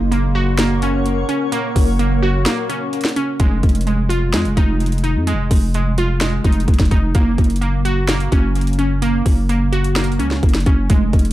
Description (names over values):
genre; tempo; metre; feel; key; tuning
hip hop, trap; 128 BPM; 4/4; half-time; unclear; A4 = 441 Hz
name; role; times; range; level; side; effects
granular cloud pad; sustained chords; 0.0-3.4 s; Bb4 to Db6; -27 LUFS; left 3 dB; built-in reverb
glassy wavetable pluck; arpeggios; 0.0-11.3 s; Ab3 to Gb4; -20 LUFS; right 2 dB; chorus, low-pass filter, ping-pong delay
growling 808-style bass; bass; 0.0-11.3 s; F1 to F2; -18 LUFS; equal; none
trap drum kit; drums; 0.1-11.3 s; hi-hat, kick drum, snare drum; -17 LUFS; equal; none
room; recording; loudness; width
little or no reverb; dark, warm production; -14 LUFS; side -14 dB against mid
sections
0.0-3.4 A section; 3.4-11.3 B section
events
break 2.5-3.4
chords
0.0 Gb; 3.4 Fm7; 7.1 Gb